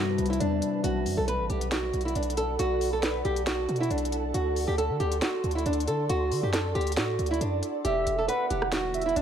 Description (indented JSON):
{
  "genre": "hip hop, trap",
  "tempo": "137 BPM",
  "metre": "4/4",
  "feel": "half-time",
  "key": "E minor",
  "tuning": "A4 = 440 Hz",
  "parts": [
    { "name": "nylon-string guitar", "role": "melody", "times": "0.0-9.2 s", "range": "D4 to B4", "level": "-29 LUFS", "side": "right 1 dB", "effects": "low-pass filter, digital delay" },
    { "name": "concert harp", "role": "accompaniment", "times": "0.0-3.3 s", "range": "C3 to C4", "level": "-34 LUFS", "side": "left 9 dB", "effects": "low-pass filter" },
    { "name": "ethereal airy pad", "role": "sustained chords", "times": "0.0-9.2 s", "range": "D3 to C6", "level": "-34 LUFS", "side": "right 2 dB", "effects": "ensemble chorus, built-in reverb" },
    { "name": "hard-hitting 808-style bass", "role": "bass", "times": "0.0-9.2 s", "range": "E1 to D3", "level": "-31 LUFS", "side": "right 1 dB", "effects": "none" },
    { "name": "trap drum kit", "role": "drums", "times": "0.2-9.2 s", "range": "hi-hat, rim click, snare drum", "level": "-33 LUFS", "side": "equal", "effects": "none" },
    { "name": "warm velvety synth lead", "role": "second line", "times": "7.8-9.2 s", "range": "E5 to F#5", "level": "-28 LUFS", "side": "right 4 dB", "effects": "chorus, digital delay" }
  ],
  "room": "light reverb",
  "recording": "none",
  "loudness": "-25 LUFS",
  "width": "side -8 dB against mid",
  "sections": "0.0-7.8 A section; 7.8-9.2 B section",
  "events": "none",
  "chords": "0.0 Cmaj7; 0.8 Bm7; 4.3 D7; 7.8 Em7",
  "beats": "0.40 | 0.84 1.28 1.72 2.15 | 2.59 3.03 3.47 3.91 | 4.34 4.78 5.22 5.66 | 6.09 6.53 6.97 7.41 | 7.85 8.29 8.72 9.16"
}